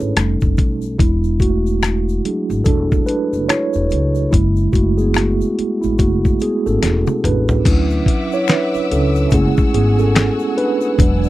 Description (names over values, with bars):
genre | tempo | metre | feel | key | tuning
R&B, neo-soul | 72 BPM | 4/4 | swing 61% on 16ths | F# minor | A4 = 440 Hz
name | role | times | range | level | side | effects
mellow tine electric piano | accompaniment | 0.0-11.3 s | F#3 to C#5 | -18 LUFS | right 2 dB | medium stereo tremolo
upright bass | bass | 0.0-11.3 s | E1 to D2 | -18 LUFS | left 1 dB | none
egg shaker and finger snaps | percussion | 0.0-11.3 s | none | -30 LUFS | left 23 dB | none
dusty soul sampler-style drum kit | drums | 0.2-11.2 s | crash cymbal, finger snaps, hi-hat, kick drum, rim click, snare drum, toms | -17 LUFS | left 1 dB | none
warm studio string section | sustained chords | 7.6-11.3 s | F#4 to E6 | -27 LUFS | left 3 dB | none
room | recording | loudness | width
little or no reverb | dry, close 1970s-style studio recording | -14 LUFS | side -16 dB against mid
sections
0.0-7.7 A section; 7.7-11.3 B section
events
tine electric piano solo 0.0-7.7, 7.7-11.3; drum fill 6.8-7.7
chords
0.2 F9; 1.0 E9; 7.7 Dmaj9; 9.3 F#m9